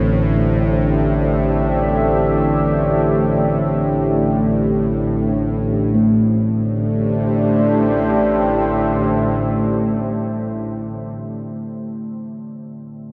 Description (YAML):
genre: dark ambient drone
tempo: free time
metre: none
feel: none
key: A minor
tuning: A4 = 440 Hz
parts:
  - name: deep dark ambient pad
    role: sustained chords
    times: 0.0-11.1 s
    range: A3 to E5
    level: -22 LUFS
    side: equal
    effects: chorus, built-in reverb
  - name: quartz singing bowl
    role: arpeggios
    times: 0.0-10.7 s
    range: D3 to C4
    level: -26 LUFS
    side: equal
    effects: tape echo
  - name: bowed-like drone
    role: drone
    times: 0.0-10.7 s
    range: A1 to A2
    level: -22 LUFS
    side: equal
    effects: built-in reverb
room: wet cathedral reverb, RT60 6.3 s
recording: none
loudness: -18 LUFS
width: mono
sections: 0.0-5.9 A section; 5.9-10.3 B section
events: none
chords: 0.0 Am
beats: free time